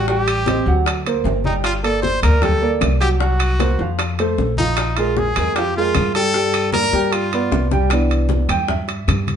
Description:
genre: Afro-Cuban jazz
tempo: 153 BPM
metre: 4/4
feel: straight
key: unclear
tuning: A4 = 440 Hz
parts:
  - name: bright trumpet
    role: melody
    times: 0.0-7.7 s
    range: Eb4 to C5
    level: -21 LUFS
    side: equal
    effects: none
  - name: warm upright piano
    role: accompaniment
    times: 0.0-9.1 s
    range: E3 to G5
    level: -21 LUFS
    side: right 2 dB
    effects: none
  - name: upright bass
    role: bass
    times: 0.0-9.4 s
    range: G1 to G2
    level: -20 LUFS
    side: left 1 dB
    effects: none
  - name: bongos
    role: percussion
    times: 0.1-9.3 s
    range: none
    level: -27 LUFS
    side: left 5 dB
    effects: none
  - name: congas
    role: percussion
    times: 0.1-9.4 s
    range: none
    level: -27 LUFS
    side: left 1 dB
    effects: none
  - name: claves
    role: percussion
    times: 0.3-9.3 s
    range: none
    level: -33 LUFS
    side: left 2 dB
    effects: none
  - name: timbales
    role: percussion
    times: 0.3-9.4 s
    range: none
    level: -26 LUFS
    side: right 6 dB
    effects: none
room: moderate studio reverb, RT60 0.8 s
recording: band playing live in one room, nothing above 10.7 kHz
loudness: -16 LUFS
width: side -8 dB against mid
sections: 0.0-7.9 A section; 7.9-9.4 B section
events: drum fill 6.9-7.9; upright piano solo 7.9-9.4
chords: 0.1 Am7b5; 0.9 Daug7; 3.2 Gbmaj7#11/C; 4.0 F; 4.8 Bb5; 6.3 Gmadd9; 7.1 G7; 7.9 Cmaj9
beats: | 0.08 0.47 0.86 1.25 | 1.65 2.04 2.43 2.82 | 3.21 3.60 3.99 4.38 | 4.78 5.17 5.56 5.95 | 6.34 6.73 7.12 7.52 | 7.91 8.30 8.69 9.08

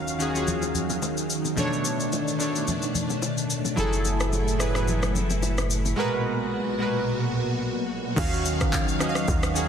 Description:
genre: amapiano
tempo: 109 BPM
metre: 4/4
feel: swing 55% on 16ths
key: unclear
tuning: A4 = 438 Hz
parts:
  - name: glassy digital keys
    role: accompaniment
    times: 0.0-9.7 s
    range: B2 to F5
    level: -27 LUFS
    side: right 1 dB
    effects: chorus
  - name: string machine, full ensemble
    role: sustained chords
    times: 0.0-9.7 s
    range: Eb2 to F5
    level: -29 LUFS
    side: equal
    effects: phaser, ensemble chorus, sidechain pumping
  - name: afro-pop drum kit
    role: drums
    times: 0.1-9.7 s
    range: crash cymbal, handclaps, kick drum, rim click, shaker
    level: -29 LUFS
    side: left 1 dB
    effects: overdrive
  - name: congas and bongos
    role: percussion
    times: 0.5-6.0 s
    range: none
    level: -33 LUFS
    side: left 3 dB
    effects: none
  - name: warm sub bass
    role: bass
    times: 3.8-5.9 s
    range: Gb1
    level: -26 LUFS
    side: equal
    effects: none
  - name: tight log drum bass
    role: bass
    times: 8.2-9.7 s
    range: Db2 to Eb2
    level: -30 LUFS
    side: equal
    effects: none
room: light reverb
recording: dense, heavily limited modern master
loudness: -23 LUFS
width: side -8 dB against mid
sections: 0.0-8.2 A section; 8.2-9.7 B section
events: drop 8.2-9.7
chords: 0.0 Ebm9; 1.6 Bm9; 3.8 Gbm9; 6.0 Abm9; 8.2 Ebm9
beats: 0.47 1.02 | 1.57 2.12 2.68 3.23 | 3.78 4.33 4.88 5.43 | 5.98 6.53 7.08 7.63 | 8.18 8.73 9.28

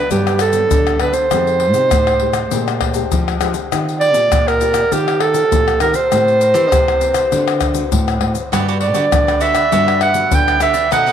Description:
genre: samba and choro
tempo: 100 BPM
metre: 4/4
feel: straight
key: G major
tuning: A4 = 440 Hz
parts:
  - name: mellow clarinet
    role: melody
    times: 0.0-11.1 s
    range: G4 to G5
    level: -15 LUFS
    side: right 2 dB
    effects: tape echo
  - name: nylon-string guitar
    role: accompaniment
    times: 0.0-11.1 s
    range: F2 to C5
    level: -26 LUFS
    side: left 10 dB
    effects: none
  - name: nylon-string guitar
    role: bass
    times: 0.0-11.1 s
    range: F2 to F3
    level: -21 LUFS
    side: right 1 dB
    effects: none
  - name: egg shaker, surdo, pandeiro and tamborim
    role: percussion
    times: 0.1-11.1 s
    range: none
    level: -19 LUFS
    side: left 4 dB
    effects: none
  - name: cavaquinho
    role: accompaniment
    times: 8.5-11.1 s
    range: D#4 to D#5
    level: -23 LUFS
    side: right 11 dB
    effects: none
room: wet spring reverb, RT60 2.6 s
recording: 1960s-style stereo with parts hard left and right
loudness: -12 LUFS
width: side -9 dB against mid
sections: 0.0-11.1 A section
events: none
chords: 0.0 Gmaj7; 1.3 Fm9; 2.5 Bb6; 3.7 Eb69; 6.1 Am9; 7.3 D6; 8.5 Gmaj7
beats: 0.12 0.72 | 1.32 1.92 2.52 3.12 | 3.72 4.32 4.92 5.52 | 6.12 6.72 7.32 7.92 | 8.52 9.12 9.72 10.32 | 10.92

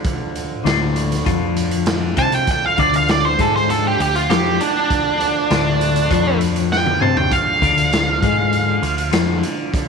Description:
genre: psychedelic rock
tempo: 99 BPM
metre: 4/4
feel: straight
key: D minor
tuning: A4 = 441 Hz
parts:
  - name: combo organ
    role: sustained chords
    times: 0.0-9.9 s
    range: F3 to F4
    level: -31 LUFS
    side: right 13 dB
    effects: none
  - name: tanpura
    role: drone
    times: 0.0-9.9 s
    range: D2 to D3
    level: -29 LUFS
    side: right 1 dB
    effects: none
  - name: raw garage drum kit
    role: drums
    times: 0.0-9.9 s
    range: hi-hat, kick drum, snare drum, toms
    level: -22 LUFS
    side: equal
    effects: none
  - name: semi-hollow electric guitar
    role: riff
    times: 0.6-9.4 s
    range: D3 to C5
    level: -21 LUFS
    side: left 13 dB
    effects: harmonic tremolo
  - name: deep dub picked electric bass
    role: bass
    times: 0.7-9.4 s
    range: D2 to C3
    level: -22 LUFS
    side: right 1 dB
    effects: none
  - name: octave-fuzz lead guitar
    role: melody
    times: 2.2-9.1 s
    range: D4 to A5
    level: -18 LUFS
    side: right 3 dB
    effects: distortion, tape echo
room: light reverb, small room ambience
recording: 1960s-style stereo with parts hard left and right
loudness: -15 LUFS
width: side -5 dB against mid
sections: 0.0-9.9 A section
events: lead electric guitar solo 0.0-9.9; drum fill 6.7-7.3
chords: 0.0 Dm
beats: | 0.04 0.65 1.26 1.86 | 2.47 3.08 3.68 4.29 | 4.90 5.50 6.11 6.71 | 7.32 7.93 8.53 9.14 | 9.74

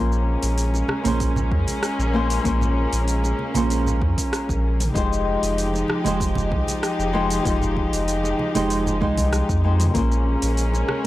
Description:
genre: sunset chillout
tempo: 96 BPM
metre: 4/4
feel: straight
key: Bb dorian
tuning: A4 = 439 Hz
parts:
  - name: flamenco guitar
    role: accompaniment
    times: 0.0-11.1 s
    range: Ab3 to C5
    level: -25 LUFS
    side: moving between left 4 dB and right 5 dB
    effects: auto-pan, tape echo
  - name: dark studio string section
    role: sustained chords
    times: 0.0-11.1 s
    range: F3 to G4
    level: -26 LUFS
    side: left 1 dB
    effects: none
  - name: round analog bass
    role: bass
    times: 0.0-10.8 s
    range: F1 to F2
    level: -23 LUFS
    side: equal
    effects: none
  - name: deep house drum kit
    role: drums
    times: 0.1-11.0 s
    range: hi-hat, rim click, shaker, toms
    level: -29 LUFS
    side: equal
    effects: overdrive
  - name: bongos and congas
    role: percussion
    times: 0.7-11.0 s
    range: none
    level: -32 LUFS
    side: right 2 dB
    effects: none
  - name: electronic kick drum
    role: drums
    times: 1.2-10.1 s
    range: none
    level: -26 LUFS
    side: equal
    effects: overdrive
room: small room ambience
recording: dry, gritty hardware recording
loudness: -19 LUFS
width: side -15 dB against mid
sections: 0.0-11.1 A section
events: none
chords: 0.0 Bbm9; 5.0 Fm9; 10.0 Bbm9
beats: 0.58 1.20 1.83 | 2.45 3.08 3.70 4.33 | 4.95 5.58 6.20 6.83 | 7.45 8.08 8.70 9.33 | 9.95 10.58

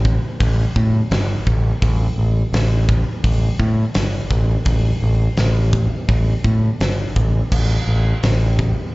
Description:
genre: heavy metal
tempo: 84 BPM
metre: 4/4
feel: straight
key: unclear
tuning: A4 = 442 Hz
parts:
  - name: growling fingered electric bass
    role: bass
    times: 0.0-8.7 s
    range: G1 to A2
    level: -16 LUFS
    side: equal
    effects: overdrive
  - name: big rock drum kit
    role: drums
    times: 0.1-8.8 s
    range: crash cymbal, hi-hat, kick drum, snare drum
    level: -20 LUFS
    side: equal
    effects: none
room: little or no reverb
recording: live gig heard through the venue's PA, club reverb, nothing above 7.8 kHz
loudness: -15 LUFS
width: side -22 dB against mid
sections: 0.0-8.9 A section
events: none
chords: none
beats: 0.40 1.11 | 1.82 2.54 3.25 3.96 | 4.67 5.38 6.09 6.80 | 7.52 8.23

